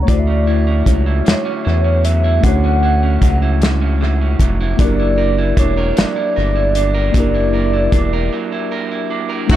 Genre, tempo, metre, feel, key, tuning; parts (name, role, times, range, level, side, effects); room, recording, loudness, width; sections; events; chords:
slow six-eight R&B; 51 BPM (dotted quarters); 6/8; straight; A4 = 440 Hz
warm velvety synth lead; melody; 0.0-9.6 s; C#5 to F#5; -21 LUFS; right 1 dB; chorus, tape echo
mellow tine electric piano; accompaniment; 0.0-9.6 s; A3 to A#5; -21 LUFS; left 2 dB; medium stereo tremolo, tape echo
round analog bass; bass; 0.0-9.6 s; E1 to E2; -16 LUFS; equal
electric guitar through a small old amp; second line; 0.1-9.6 s; D3 to A#4; -24 LUFS; right 6 dB; tape echo
warm soul drum kit; drums; 0.1-9.6 s; crash cymbal, hi-hat, kick drum, snare drum; -16 LUFS; equal; tape echo
clear horn section; stabs; 9.5-9.6 s; F#3 to F#4; -19 LUFS; right 1 dB
studio reverb; echo-heavy mix; -13 LUFS; side -12 dB against mid
0.0-9.5 A section
break 8.3-9.5
0.1 Dmaj9; 4.8 F#7b9b13